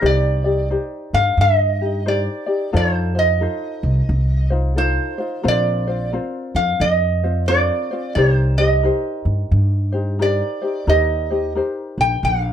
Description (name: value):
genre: Hawaiian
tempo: 88 BPM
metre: 4/4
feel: swing 62% on 8ths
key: unclear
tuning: A4 = 445 Hz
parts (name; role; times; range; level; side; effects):
- metal-body resonator slide guitar; melody; 0.0-12.5 s; C5 to G5; -20 LUFS; right 2 dB; none
- ukulele; accompaniment; 0.0-12.5 s; C4 to D5; -23 LUFS; left 4 dB; none
- upright bass; bass; 0.0-12.5 s; Bb1 to G2; -18 LUFS; equal; none
room: light reverb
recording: dark, warm production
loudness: -16 LUFS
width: side -9 dB against mid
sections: 0.0-12.5 A section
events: none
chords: 0.0 Cmadd9; 2.7 F7; 5.4 Bbsus2; 8.2 Cm7; 10.9 Eb6